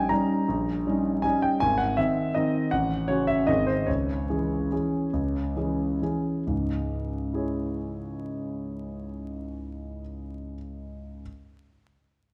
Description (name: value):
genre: classical, piano waltz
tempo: 130-170 BPM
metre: 3/4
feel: rubato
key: C# minor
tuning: A4 = 440 Hz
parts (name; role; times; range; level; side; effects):
- warm concert grand piano; solo; 0.0-11.2 s; G#1 to A#5; -28 LUFS; equal; none
room: wet recital hall reverb, RT60 1.9 s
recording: vinyl crackle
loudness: -27 LUFS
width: mono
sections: 0.0-6.5 A section; 6.5-9.1 B section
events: slowing down 3.3-6.5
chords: 0.0 D#7/A#; 1.6 G#; 2.7 F#m/A; 3.5 G#; 3.9 C#m